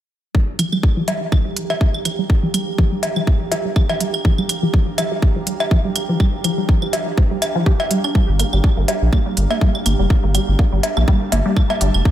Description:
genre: minimal techno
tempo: 123 BPM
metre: 4/4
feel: swing 55% on 16ths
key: G minor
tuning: A4 = 440 Hz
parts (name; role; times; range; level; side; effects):
- resonant blip pluck; riff; 0.3-12.1 s; F3 to G4; -22 LUFS; equal; phaser, sidechain pumping, diffuse ambient delay
- electronic kick drum; drums; 0.3-12.1 s; none; -16 LUFS; equal; none
- airy breathy pad; texture; 0.3-12.1 s; D4 to Bb5; -33 LUFS; right 2 dB; chorus, sidechain pumping
- pulsing gated texture; texture; 0.8-12.1 s; G4; -30 LUFS; right 8 dB; chorus, built-in reverb, sidechain pumping
- electronic hi-hat; drums; 0.6-11.9 s; none; -27 LUFS; right 3 dB; none
- claves and cowbell; percussion; 0.6-12.0 s; none; -24 LUFS; left 2 dB; overdrive, analog delay
- saturated sub bass; bass; 8.3-12.0 s; F1 to Bb1; -17 LUFS; equal; sidechain pumping
room: light reverb, digital ambience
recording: none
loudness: -15 LUFS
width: side -12 dB against mid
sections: 0.3-12.1 A section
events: fade-in on analog synth pad 0.3-12.1; filter sweep on synth arpeggio sound 0.3-12.1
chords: 0.3 Gm7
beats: | 0.35 0.83 1.32 1.81 | 2.30 2.79 3.27 3.76 | 4.25 4.74 5.22 5.71 | 6.20 6.69 7.17 7.66 | 8.15 8.64 9.13 9.61 | 10.10 10.59 11.08 11.56 | 12.05

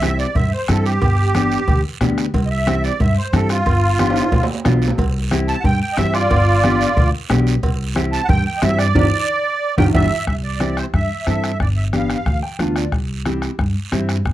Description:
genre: latin, cumbia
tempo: 181 BPM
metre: 4/4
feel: straight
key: C major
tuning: A4 = 440 Hz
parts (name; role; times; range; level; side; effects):
- musette accordion; melody; 0.0-12.4 s; F4 to A5; -20 LUFS; right 2 dB; cassette tape
- mellow electric guitar; accompaniment; 0.0-14.2 s; B3 to G5; -22 LUFS; left 2 dB; cassette tape
- upright bass; bass; 0.0-14.3 s; G1 to G2; -19 LUFS; equal; none
- bombo; percussion; 0.0-14.3 s; none; -22 LUFS; left 1 dB; none
- congas; percussion; 0.0-14.1 s; none; -24 LUFS; right 1 dB; none
- cowbell and timbales; percussion; 0.0-10.0 s; none; -28 LUFS; right 4 dB; none
- guiro; percussion; 0.0-14.3 s; none; -32 LUFS; right 8 dB; none
room: light reverb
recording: home recording on cassette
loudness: -15 LUFS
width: side -14 dB against mid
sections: 0.0-10.3 A section; 10.3-14.3 B section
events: accordion solo 0.0-10.3; drum fill 4.0-5.0, 9.6-10.3; band accent 9.0-10.3; clean electric guitar fill 12.3-12.9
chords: 0.0 C; 1.0 G; 2.3 C; 3.7 G7; 5.0 C; 6.3 G7; 7.6 C; 9.0 G5; 10.3 C; 11.6 G7; 12.9 C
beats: 0.03 0.36 0.69 | 1.02 1.35 1.68 2.01 | 2.34 2.67 3.00 3.33 | 3.67 4.00 4.33 4.66 | 4.99 5.32 5.65 5.98 | 6.31 6.64 6.97 7.30 | 7.63 7.96 8.29 8.62 | 8.96 9.29 9.62 9.95 | 10.28 10.61 10.94 11.27 | 11.60 11.94 12.27 12.60 | 12.93 13.26 13.59 13.92 | 14.26

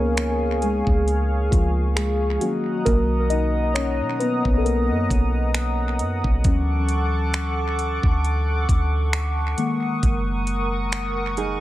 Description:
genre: contemporary R&B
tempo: 67 BPM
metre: 4/4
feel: swing 54% on 16ths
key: unclear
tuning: A4 = 440 Hz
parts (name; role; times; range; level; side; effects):
- muted felt-like synth keys; accompaniment; 0.0-11.6 s; D#3 to D#5; -25 LUFS; left 2 dB; chorus, analog delay
- chorused pulse-width pad; sustained chords; 0.0-11.6 s; G#4 to D#6; -27 LUFS; equal; sidechain pumping
- soft 808-style bass; bass; 0.0-11.6 s; F#1 to B2; -23 LUFS; equal; none
- smooth R&B drum kit; drums; 0.2-11.6 s; finger snaps, hi-hat, kick drum; -23 LUFS; equal; vintage 12-bit sampler grit
- nylon-string guitar; arpeggios; 11.4-11.6 s; D#4 to G#4; -26 LUFS; right 7 dB; none
room: light reverb, digital ambience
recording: echo-heavy mix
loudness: -19 LUFS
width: side -15 dB against mid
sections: 0.0-11.6 A section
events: synth keys solo 0.0-11.6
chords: 0.0 C#7; 2.4 Bmaj7; 6.4 Dmaj7; 9.6 F#6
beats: 0.18 1.07 1.97 | 2.87 3.76 4.66 5.55 | 6.45 7.34 8.24 9.13 | 10.03 10.93

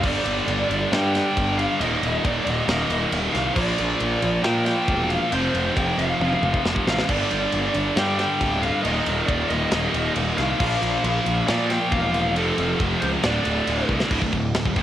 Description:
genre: heavy metal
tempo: 136 BPM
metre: 4/4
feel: straight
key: unclear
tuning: A4 = 439 Hz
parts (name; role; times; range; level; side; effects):
- lead guitar through a small cranked amp; melody; 0.0-13.9 s; A4 to G5; -27 LUFS; equal; overdrive, cassette tape
- scooped high-gain guitar; riff; 0.0-14.8 s; D2 to Bb3; -23 LUFS; equal; distortion, cassette tape
- fuzz picked electric bass; bass; 0.0-14.8 s; D1 to Bb2; -26 LUFS; equal; overdrive
- tight metal drum kit; drums; 0.0-14.8 s; crash cymbal, kick drum, ride cymbal, snare drum, toms; -28 LUFS; equal; cassette tape
room: studio reverb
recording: home recording on cassette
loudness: -19 LUFS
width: side -12 dB against mid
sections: 0.0-14.1 A section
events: half time 0.0-14.1; drum fill 6.2-7.1, 13.9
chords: 0.0 G5; 1.8 Eb5; 3.6 Bb; 5.3 F5; 7.1 G5; 8.8 Eb5; 10.6 Bb5; 12.4 F; 13.2 D5; 14.1 Dm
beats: | 0.04 0.48 0.92 1.36 | 1.80 2.24 2.68 3.12 | 3.56 4.00 4.45 4.88 | 5.33 5.76 6.21 6.65 | 7.09 7.53 7.97 8.41 | 8.85 9.29 9.73 10.17 | 10.61 11.04 11.48 11.92 | 12.36 12.80 13.24 13.67 | 14.11 14.55

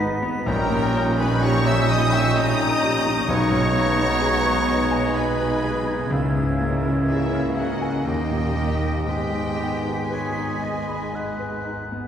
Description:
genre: classical, romantic movement for piano and orchestra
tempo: 63 BPM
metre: 3/4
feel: uneven beats, rubato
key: G# minor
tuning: A4 = 440 Hz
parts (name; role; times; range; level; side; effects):
- clear grand piano; melody; 0.0-12.1 s; A#1 to B5; -25 LUFS; left 1 dB; none
- bright silver concert flute; second line; 0.0-11.9 s; G6 to B6; -33 LUFS; equal; none
- clear clarinet; second line; 0.0-11.8 s; B3 to D#4; -32 LUFS; left 2 dB; none
- clear oboe; second line; 0.0-12.1 s; C#5 to F#5; -33 LUFS; equal; none
- warm bassoon; accompaniment; 0.0-11.8 s; G#3 to C#4; -31 LUFS; right 1 dB; none
- warm studio cello section; bass; 0.0-11.9 s; G#2 to D#3; -30 LUFS; right 2 dB; none
- warm studio double bass section; bass; 0.0-11.9 s; G#1 to D#2; -28 LUFS; right 2 dB; none
- warm studio violin section; melody; 0.5-11.7 s; E5 to E6; -30 LUFS; left 3 dB; none
- warm studio violin section; second line; 0.5-11.6 s; C#5 to C#6; -32 LUFS; left 3 dB; none
- rich studio viola section; accompaniment; 0.5-11.7 s; E4 to E5; -34 LUFS; equal; none
- clear trombone section; sustained chords; 0.5-11.9 s; D#3 to A#3; -32 LUFS; right 2 dB; none
- dark French horn section; sustained chords; 0.5-11.9 s; A#3 to D#4; -32 LUFS; left 2 dB; none
- clear trumpet section; stabs; 0.5-11.7 s; E4 to E5; -30 LUFS; right 1 dB; none
room: wet concert hall reverb, RT60 2.1 s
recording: heard from further back in the room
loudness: -19 LUFS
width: side -8 dB against mid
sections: 0.0-12.1 A section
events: none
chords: 0.5 D#7/A#; 3.3 G#m/B; 6.1 A#m7b5/C#; 8.1 D#7; 9.1 G#m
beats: | 0.47 1.43 2.36 | 3.29 4.22 5.17 | 6.12 7.09 8.06 | 9.07 10.11 11.15

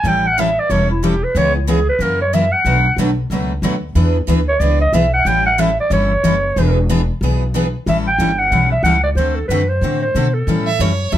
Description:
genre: acoustic string swing (jazz manouche)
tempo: 184 BPM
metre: 4/4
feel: swing 60% on 8ths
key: A mixolydian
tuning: A4 = 445 Hz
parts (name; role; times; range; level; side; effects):
- growling clarinet; melody; 0.0-11.0 s; E4 to G5; -16 LUFS; right 1 dB; none
- picked steel-string acoustic guitar; accompaniment; 0.0-11.2 s; B2 to A4; -20 LUFS; left 3 dB; none
- picked steel-string acoustic guitar; accompaniment; 0.0-11.2 s; B2 to B4; -24 LUFS; right 4 dB; none
- upright bass; bass; 0.0-11.2 s; E1 to B2; -18 LUFS; equal; none
- warm violin; second line; 10.7-11.2 s; C#5 to E5; -19 LUFS; right 6 dB; none
room: light reverb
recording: faint mains hum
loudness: -13 LUFS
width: side -12 dB against mid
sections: 0.0-7.9 A section; 7.9-11.2 B section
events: clarinet solo 0.0-7.9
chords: 0.0 A7; 1.3 C#m7; 2.0 F#7; 2.7 Bm7; 4.0 E7; 5.3 A7; 6.6 E7; 7.9 A7; 9.2 D7; 10.5 A7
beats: | 0.04 0.37 0.70 1.02 | 1.35 1.68 2.00 2.33 | 2.65 2.98 3.31 3.63 | 3.96 4.28 4.61 4.93 | 5.26 5.58 5.91 6.24 | 6.56 6.89 7.21 7.54 | 7.86 8.19 8.52 8.84 | 9.17 9.49 9.82 10.15 | 10.47 10.80 11.12

